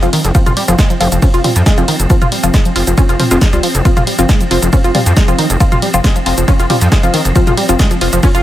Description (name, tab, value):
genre	driving peak-time techno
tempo	137 BPM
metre	4/4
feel	straight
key	F minor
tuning	A4 = 442 Hz
part	tight sequenced synth	riff	0.0-8.4 s	Eb3 to F4	-17 LUFS	equal	chorus, tube saturation, sidechain pumping, dub echo
part	filtered dub chord stab	stabs	0.0-8.3 s	F3 to F4	-18 LUFS	left 1 dB	phaser, sidechain pumping, tape echo
part	gritty driven synth bass	bass	0.0-8.4 s	F1 to F2	-15 LUFS	equal	sidechain pumping
part	swarming drone	drone	0.1-8.4 s	F3 to C4	-22 LUFS	equal	built-in reverb, sidechain pumping
part	breakbeat sampler-style drum kit	drums	0.0-8.3 s	hi-hat, snare drum	-31 LUFS	equal	none
part	punchy analog drum machine	drums	0.0-8.4 s	hi-hat, ride cymbal, shaker, snare drum, toms	-18 LUFS	equal	none
part	electronic kick drum	drums	0.3-8.3 s	none	-11 LUFS	equal	none
room	digital ambience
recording	none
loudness	-9 LUFS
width	side -13 dB against mid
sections	0.0-8.4 A section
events	none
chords	0.0 F5